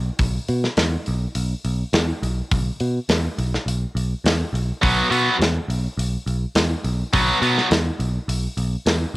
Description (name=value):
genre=hard rock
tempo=104 BPM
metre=4/4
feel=straight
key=unclear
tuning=A4 = 439 Hz
part: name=picked electric bass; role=bass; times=0.0-9.2 s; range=B1 to B2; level=-22 LUFS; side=equal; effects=none
part: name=tight metal drum kit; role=drums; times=0.2-9.0 s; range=hi-hat, kick drum, snare drum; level=-23 LUFS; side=equal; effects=none
part: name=heavy high-gain guitar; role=riff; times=4.8-7.7 s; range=B2 to B3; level=-19 LUFS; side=equal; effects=distortion, cassette tape
room=light reverb, studio reverb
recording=home recording on cassette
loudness=-19 LUFS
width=side -19 dB against mid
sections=0.0-9.2 A section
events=none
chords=0.0 B5